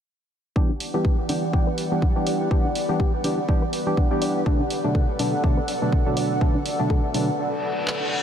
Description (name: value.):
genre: deep house.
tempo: 123 BPM.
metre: 4/4.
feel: swing 56% on 16ths.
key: E minor.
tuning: A4 = 439 Hz.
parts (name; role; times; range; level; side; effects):
airy breathy pad; sustained chords; 0.6-8.2 s; E3 to F#5; -28 LUFS; equal; chorus, sidechain pumping.
percussive organ stab; stabs; 0.6-7.3 s; B2 to G4; -25 LUFS; equal; lush chorus, sidechain pumping, tape echo.
electronic kick drum; drums; 0.6-7.0 s; none; -21 LUFS; equal; none.
soft round pluck; arpeggios; 0.7-7.2 s; D4 to D5; -34 LUFS; left 2 dB; none.
punchy analog drum machine; drums; 0.8-8.0 s; handclaps, hi-hat; -32 LUFS; right 1 dB; none.
reverse cymbal; sound effects; 7.6-8.2 s; none; -28 LUFS; left 2 dB; none.
room: moderate huge ambient reverb, RT60 7.7 s.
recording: dreamy mix soaked in reverb.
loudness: -20 LUFS.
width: side -9 dB against mid.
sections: 0.6-8.2 A section.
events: filter sweep on synth stab 0.6-8.2; break 7.4-8.2; reverse cymbal 7.6-8.2; drum fill 7.9-8.2.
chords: 0.6 Em7; 4.5 Bm7.